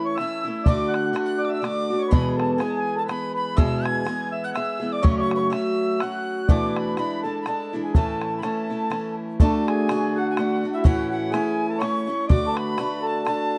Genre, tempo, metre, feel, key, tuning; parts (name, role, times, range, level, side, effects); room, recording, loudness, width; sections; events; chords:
celtic folk, Celtic waltz; 124 BPM; 3/4; swing 56% on 8ths; A major; A4 = 443 Hz
mellow accordion; melody; 0.0-13.6 s; E4 to G#5; -30 LUFS; equal; slapback echo
bright wooden whistle; second line; 0.0-13.6 s; E5 to G#6; -35 LUFS; equal
picked acoustic archtop guitar; accompaniment; 0.0-13.6 s; E2 to G#4; -27 LUFS; equal
bodhran; percussion; 0.2-13.4 s; -23 LUFS; equal
light reverb; dark, warm production, nothing above 11.0 kHz; -23 LUFS; mono
0.0-9.4 A section; 9.4-13.6 A section
0.0 A; 0.7 D; 2.1 E; 5.0 F#m; 6.5 E7sus4; 7.0 E7; 7.9 A; 9.4 D; 10.9 A; 12.3 D